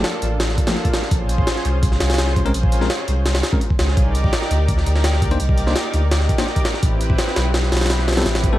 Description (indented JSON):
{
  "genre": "drum and bass, jungle",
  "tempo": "168 BPM",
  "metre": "4/4",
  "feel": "straight",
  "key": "unclear",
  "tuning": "A4 = 440 Hz",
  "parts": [
    { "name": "lush unison pad", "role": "sustained chords", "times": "0.0-8.6 s", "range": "Bb3 to D5", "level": "-25 LUFS", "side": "equal", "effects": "chorus" },
    { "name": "soft dub sub bass", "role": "bass", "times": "0.0-8.6 s", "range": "A1 to D2", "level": "-19 LUFS", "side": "equal", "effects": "none" },
    { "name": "jungle sampler-style drum kit", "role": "drums", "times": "0.0-8.5 s", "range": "hi-hat, kick drum, snare drum", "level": "-19 LUFS", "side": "equal", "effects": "none" },
    { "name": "bell-like tine electric piano", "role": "stabs", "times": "0.7-8.6 s", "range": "F3 to C5", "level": "-26 LUFS", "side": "left 2 dB", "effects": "medium stereo tremolo, dub echo" }
  ],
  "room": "light reverb",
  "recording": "vinyl crackle",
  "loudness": "-16 LUFS",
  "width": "side -15 dB against mid",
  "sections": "0.0-8.6 A section",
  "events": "none",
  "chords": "0.0 Gm9 (rootless); 1.1 Bbm9; 4.0 Cm9; 6.8 Am9",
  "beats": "0.04 0.40 0.76 | 1.11 1.47 1.83 2.19 | 2.54 2.90 3.26 3.61 | 3.97 4.33 4.69 5.04 | 5.40 5.76 6.11 6.47 | 6.83 7.19 7.54 7.90 | 8.26"
}